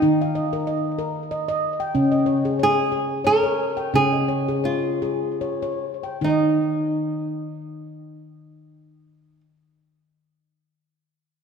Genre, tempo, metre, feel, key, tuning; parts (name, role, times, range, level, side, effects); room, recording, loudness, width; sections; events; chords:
world meditative, meditative tuned percussion; 70-94 BPM; 3/4; swing 56% on 16ths; A4 = 435 Hz
flamenco guitar; melody; 0.0-9.4 s; Eb4 to Bb4; -22 LUFS; right 2 dB
handpan; arpeggios; 0.0-9.5 s; Db3 to G5; -23 LUFS; left 2 dB; ping-pong delay
wet echo chamber reverb, RT60 2.3 s; -20 LUFS; side -6 dB against mid
0.0-6.2 A section; 6.2-11.4 B section
slowing down 2.0-6.2
0.0 Eb5; 2.0 Db; 6.2 N.C.